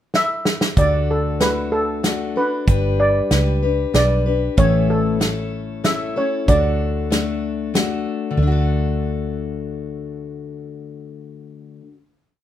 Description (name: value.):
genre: honky-tonk and classic country.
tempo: 95 BPM.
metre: 3/4.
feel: straight.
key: D major.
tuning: A4 = 440 Hz.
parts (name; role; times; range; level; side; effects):
natural country drum kit; drums; 0.1-7.9 s; hi-hat, kick drum, snare drum; -20 LUFS; right 1 dB; none.
steel pan; melody; 0.2-7.7 s; A4 to E5; -21 LUFS; right 2 dB; none.
picked steel-string acoustic guitar; accompaniment; 0.8-12.0 s; A2 to B4; -23 LUFS; left 6 dB; none.
vintage muted fingered electric bass; bass; 0.8-11.5 s; G1 to D2; -21 LUFS; right 1 dB; none.
room: moderate studio reverb, RT60 0.8 s.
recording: close, detailed microphones.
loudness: -17 LUFS.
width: side -11 dB against mid.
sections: 0.0-0.8 pickup bar; 0.8-8.4 A section; 8.4-12.2 final chord.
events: drum fill 0.1-0.8.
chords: 0.0 N.C.; 0.8 D; 2.7 G; 4.6 A; 6.5 D.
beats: 0.13 | 0.77 1.40 2.04 | 2.67 3.31 3.94 | 4.58 5.21 5.84 | 6.48 7.11 7.74 | 8.37 9.00 9.63 | 10.27 10.90 11.53.